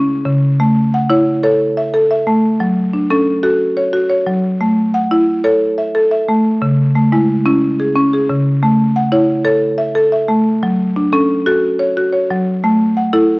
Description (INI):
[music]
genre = southern african traditional, mbira-style interlocking cycle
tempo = 120 BPM (dotted quarters)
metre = 12/8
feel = straight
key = A major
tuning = A4 = 440 Hz
[part]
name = buzzing marimba with medium hard mallets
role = solo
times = 0.0-13.4 s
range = C#3 to F#5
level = -12 LUFS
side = equal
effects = none
[sound]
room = moderate recital hall reverb, RT60 1.6 s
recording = worn, warbling old tape, cassette tape, warbly pitch drift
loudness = -12 LUFS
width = side -27 dB against mid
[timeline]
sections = 0.0-12.6 A section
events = none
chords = 0.0 C#5; 0.6 A; 2.6 F#m; 4.6 A; 6.6 C#m; 8.6 A; 10.6 F#m; 12.6 A5